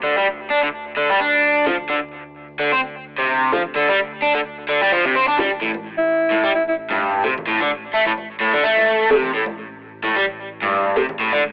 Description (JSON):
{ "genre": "breakbeat, breaks", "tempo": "129 BPM", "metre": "4/4", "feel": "swing 55% on 16ths", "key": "D minor", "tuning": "A4 = 440 Hz", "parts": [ { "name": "crunchy overdriven guitar", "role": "riff", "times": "0.0-11.4 s", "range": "G2 to D4", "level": "-16 LUFS", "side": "equal", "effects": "tube saturation, low-pass filter, cassette tape, analog delay" }, { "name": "fat analog bass", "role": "bass", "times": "0.0-11.5 s", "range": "A1 to D2", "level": "-39 LUFS", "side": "equal", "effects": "none" }, { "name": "filtered dub chord stab", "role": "stabs", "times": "1.7-11.2 s", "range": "C4 to A4", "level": "-21 LUFS", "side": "equal", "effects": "phaser, lush chorus, cassette tape, analog delay" }, { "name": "congas", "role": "percussion", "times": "5.7-11.4 s", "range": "none", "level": "-35 LUFS", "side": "equal", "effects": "none" }, { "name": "bright alto saxophone", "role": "melody", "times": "6.0-6.7 s", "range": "E4", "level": "-18 LUFS", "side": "equal", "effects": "AM radio sound, analog delay" } ], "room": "wet booth ambience, RT60 0.2 s", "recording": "home recording on cassette, vinyl crackle, telephone sound", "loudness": "-16 LUFS", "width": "side -26 dB against mid", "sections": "0.0-11.5 A section", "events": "none", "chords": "0.0 Dm; 5.6 Am7", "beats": "| 0.04 0.50 0.97 1.43 | 1.90 2.36 2.83 3.29 | 3.76 4.22 4.69 5.15 | 5.62 6.08 6.55 7.01 | 7.48 7.94 8.41 8.87 | 9.34 9.80 10.27 10.73 | 11.20" }